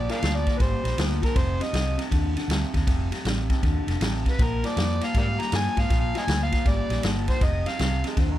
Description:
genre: electric blues shuffle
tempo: 158 BPM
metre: 4/4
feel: swing 65% on 8ths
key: unclear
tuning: A4 = 439 Hz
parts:
  - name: overdriven harmonica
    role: melody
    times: 0.0-2.0, 4.3-8.0 s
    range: Bb4 to Bb5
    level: -30 LUFS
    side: right 1 dB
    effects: none
  - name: electric guitar through a small old amp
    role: riff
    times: 0.0-8.4 s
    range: F2 to G3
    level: -30 LUFS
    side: left 2 dB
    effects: spring reverb
  - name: vintage muted fingered electric bass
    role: bass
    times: 0.0-8.4 s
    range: F1 to Ab2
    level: -27 LUFS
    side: equal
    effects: none
  - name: vintage drum kit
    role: drums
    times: 0.1-8.3 s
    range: kick drum, ride cymbal, snare drum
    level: -25 LUFS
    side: equal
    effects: none
  - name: growling tenor saxophone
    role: second line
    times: 8.1-8.4 s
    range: Eb3 to Ab3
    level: -36 LUFS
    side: right 7 dB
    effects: none
room: light reverb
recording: none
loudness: -22 LUFS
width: side -13 dB against mid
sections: 0.0-8.4 A section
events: none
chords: 0.0 Bb; 1.4 F7; 4.4 Bb7; 7.4 F7(no3)

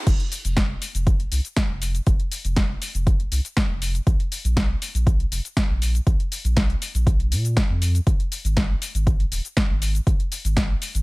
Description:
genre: progressive house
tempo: 120 BPM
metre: 4/4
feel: straight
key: F minor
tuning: A4 = 440 Hz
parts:
  - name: saturated sub bass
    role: bass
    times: 0.1-11.0 s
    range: Eb1 to Bb2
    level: -22 LUFS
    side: equal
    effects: sidechain pumping, high-pass filter
  - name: deep house drum kit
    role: drums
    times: 0.1-11.0 s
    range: cabasa, crash cymbal, hi-hat, snare drum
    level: -27 LUFS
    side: left 1 dB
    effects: overdrive, sidechain pumping on perc, sidechain pumping on hats, sidechain pumping on cymbals
  - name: electronic kick drum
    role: drums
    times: 0.1-10.7 s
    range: none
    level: -21 LUFS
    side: equal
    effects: overdrive
room: little or no reverb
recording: high-pass filter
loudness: -20 LUFS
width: side -24 dB against mid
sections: 0.1-11.0 A section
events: drop 0.1-11.0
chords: none

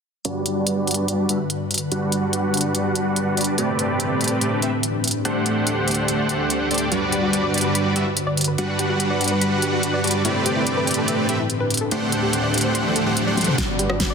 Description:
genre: future bass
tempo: 144 BPM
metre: 4/4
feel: half-time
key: G major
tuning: A4 = 440 Hz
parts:
  - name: ethereal airy pad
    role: sustained chords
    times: 0.8-14.1 s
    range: D2 to C5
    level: -27 LUFS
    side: left 1 dB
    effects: ensemble chorus, built-in reverb, sidechain pumping
  - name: dense compressed supersaw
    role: riff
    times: 0.2-14.1 s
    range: G3 to F#5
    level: -21 LUFS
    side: equal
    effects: sidechain pumping, low-pass filter, ping-pong delay
  - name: pop drum kit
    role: drums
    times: 0.2-14.1 s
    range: hi-hat, rim click, snare drum, toms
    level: -24 LUFS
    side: equal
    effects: none
  - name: soft round pluck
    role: arpeggios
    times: 6.9-14.1 s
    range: E4 to C6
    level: -29 LUFS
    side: left 2 dB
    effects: chorus, cassette tape, sidechain pumping, ping-pong delay
  - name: riser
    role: sound effects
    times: 11.8-14.1 s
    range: none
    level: -30 LUFS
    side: right 1 dB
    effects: none
  - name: warm 808-style bass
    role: bass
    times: 13.6-14.1 s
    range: G1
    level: -29 LUFS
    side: equal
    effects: sidechain pumping
  - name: electronic kick drum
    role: drums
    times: 13.6-14.1 s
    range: none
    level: -26 LUFS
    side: equal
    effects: none
room: moderate lush hall reverb, RT60 1.9 s, digital ambience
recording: dense, heavily limited modern master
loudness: -19 LUFS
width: side -6 dB against mid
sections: 0.2-13.6 A section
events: filter sweep on supersaw synth 0.2-13.6; riser 11.8-13.6, 13.6-14.1; drum fill 13.4, 13.6-14.1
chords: 0.2 Gmaj7; 3.6 Am11; 5.2 D7sus4; 6.9 Gmaj7; 10.2 Am11; 11.9 D7sus4; 13.6 Gmaj7

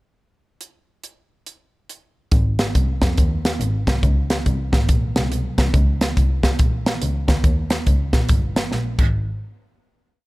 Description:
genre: uptempo gospel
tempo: 141 BPM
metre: 4/4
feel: swing 64% on 8ths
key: Ab major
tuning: A4 = 441 Hz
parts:
  - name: crisp fusion drum kit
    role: drums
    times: 0.6-9.1 s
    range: crash cymbal, hi-hat, kick drum, snare drum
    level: -18 LUFS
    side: equal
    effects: none
  - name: warm double bass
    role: bass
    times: 2.3-9.1 s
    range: G1 to F2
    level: -22 LUFS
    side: equal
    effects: none
room: little or no reverb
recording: none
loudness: -17 LUFS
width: side -20 dB against mid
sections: 0.6-2.3 pickup bar; 2.3-9.1 breakdown; 9.1-10.3 final hit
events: drum fill 8.7-9.1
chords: none

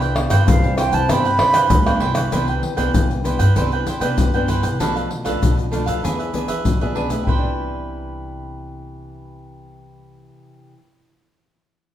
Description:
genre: samba and choro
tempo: 97 BPM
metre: 4/4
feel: straight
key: C major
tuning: A4 = 439 Hz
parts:
  - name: mellow trombone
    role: second line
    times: 0.0-2.0 s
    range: C4 to D4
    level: -28 LUFS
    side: left 5 dB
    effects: none
  - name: cavaquinho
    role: accompaniment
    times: 0.0-10.8 s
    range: D4 to G5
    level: -25 LUFS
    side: right 4 dB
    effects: none
  - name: nylon-string guitar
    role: accompaniment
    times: 0.0-10.9 s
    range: G2 to G#4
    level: -26 LUFS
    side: left 1 dB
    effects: none
  - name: upright bass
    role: bass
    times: 0.0-10.3 s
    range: B1 to E3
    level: -23 LUFS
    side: equal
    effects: none
  - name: egg shaker, pandeiro, tamborim and surdo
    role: percussion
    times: 0.0-7.4 s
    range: none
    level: -20 LUFS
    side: left 2 dB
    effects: none
  - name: wooden flute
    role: melody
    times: 0.5-2.0 s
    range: F5 to B5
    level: -18 LUFS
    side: right 3 dB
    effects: none
room: wet large studio reverb, RT60 1.2 s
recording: band playing live in one room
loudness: -16 LUFS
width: side -11 dB against mid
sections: 0.0-2.3 A section; 2.3-7.3 B section; 7.3-9.8 C section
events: none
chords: 0.0 Cmaj9; 4.8 Bm7b5; 6.0 E7; 7.3 Cmaj9

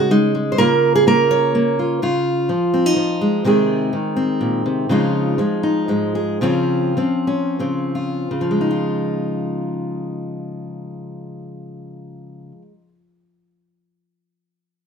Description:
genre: folk, solo fingerstyle acoustic guitar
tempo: 77-127 BPM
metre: 3/4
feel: straight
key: Db major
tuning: A4 = 441 Hz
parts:
  - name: fingerpicked steel-string acoustic guitar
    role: solo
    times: 0.0-12.9 s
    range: Ab2 to Db5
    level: -17 LUFS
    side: equal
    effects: none
room: light reverb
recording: minimal, uncompressed stereo recording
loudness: -16 LUFS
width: side -6 dB against mid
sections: 0.0-4.9 A section; 4.9-8.3 B section; 8.3-12.9 C section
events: slowing down 4.9-8.3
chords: 0.0 Dbsus2; 0.6 Bbm/Db; 2.0 Dbadd9; 3.4 Ab/C; 4.9 Dbadd9; 6.4 Dbmaj7; 8.3 Dbadd9

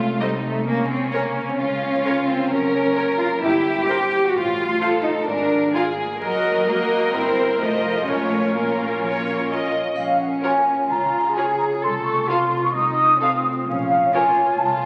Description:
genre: cinematic, playful, whimsical film cue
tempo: 129 BPM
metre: 4/4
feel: straight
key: Bb minor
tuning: A4 = 440 Hz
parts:
  - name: rich chamber violin section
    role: second line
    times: 0.0-14.2 s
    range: Db4 to Bb4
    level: -27 LUFS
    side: equal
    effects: none
  - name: concert harp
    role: arpeggios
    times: 0.0-14.9 s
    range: F2 to Db5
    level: -32 LUFS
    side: equal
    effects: none
  - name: rich chamber cello section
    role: bass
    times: 0.0-14.9 s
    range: Gb3 to A4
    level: -25 LUFS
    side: equal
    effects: none
  - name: warm chamber double bass section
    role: bass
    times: 0.0-14.9 s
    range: F1 to Db2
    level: -39 LUFS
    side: equal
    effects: none
  - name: rich chamber violin section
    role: melody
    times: 0.2-14.2 s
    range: Bb4 to F5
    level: -30 LUFS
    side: equal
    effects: none
  - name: rich chamber viola section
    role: accompaniment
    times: 0.2-14.2 s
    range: E4 to C5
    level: -31 LUFS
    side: equal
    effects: none
  - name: mellow hollow small flute group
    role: second line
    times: 10.0-14.9 s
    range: F5 to Eb6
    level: -21 LUFS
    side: equal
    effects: none
  - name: triangle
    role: percussion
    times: 10.0-10.9 s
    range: none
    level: -54 LUFS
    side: equal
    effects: none
room: wet scoring stage reverb, RT60 1.9 s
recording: very old 78 rpm record, vinyl crackle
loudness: -20 LUFS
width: mono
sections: 0.0-10.0 A section; 10.0-14.9 A section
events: none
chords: 0.0 Adim/C; 0.7 Bbm/Db; 2.5 Gb; 3.4 C7/G; 4.4 F/A; 5.3 Bb7/Ab; 6.2 Ebm/Gb; 7.1 C7/G; 7.6 F7; 8.1 Bbm; 10.9 Db; 11.8 F7/C; 13.7 Bbm

